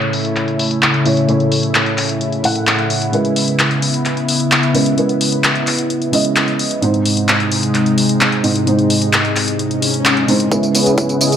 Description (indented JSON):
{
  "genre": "EDM, festival progressive house",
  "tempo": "130 BPM",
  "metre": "4/4",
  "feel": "straight",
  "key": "C# minor",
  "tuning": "A4 = 440 Hz",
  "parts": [
    { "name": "felt-muted upright piano", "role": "accompaniment", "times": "0.0-11.4 s", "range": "G#2 to F#5", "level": "-18 LUFS", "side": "right 2 dB", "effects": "sidechain pumping, digital delay" },
    { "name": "lush unison pad", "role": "sustained chords", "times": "0.0-11.4 s", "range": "B#2 to E4", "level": "-19 LUFS", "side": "left 1 dB", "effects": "chorus, phaser, sidechain pumping" },
    { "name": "big-room dance drum kit", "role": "drums", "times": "0.0-11.4 s", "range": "handclaps, hi-hat, tambourine", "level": "-17 LUFS", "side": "left 1 dB", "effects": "low-pass filter on hats, small room ambience, low-pass filter on snare, low-pass filter on perc" },
    { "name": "swell", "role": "sound effects", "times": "9.7-10.5 s", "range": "none", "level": "-21 LUFS", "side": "left 6 dB", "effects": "none" },
    { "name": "supersaw chords", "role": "riff", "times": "10.5-11.3 s", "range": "B3 to D#5", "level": "-16 LUFS", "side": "equal", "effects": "sidechain pumping, low-pass filter, digital delay" },
    { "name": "electronic kick drum", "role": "drums", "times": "10.5-11.1 s", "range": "none", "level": "-21 LUFS", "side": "left 1 dB", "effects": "high-pass filter on kick, small room ambience" }
  ],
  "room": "moderate digital room reverb, RT60 1.3 s, digital ambience",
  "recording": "none",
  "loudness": "-13 LUFS",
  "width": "side -9 dB against mid",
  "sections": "0.0-10.5 A section",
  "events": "swell 9.7-10.5",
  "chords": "0.0 A; 3.1 C#m7; 6.8 G#; 10.5 C#m7"
}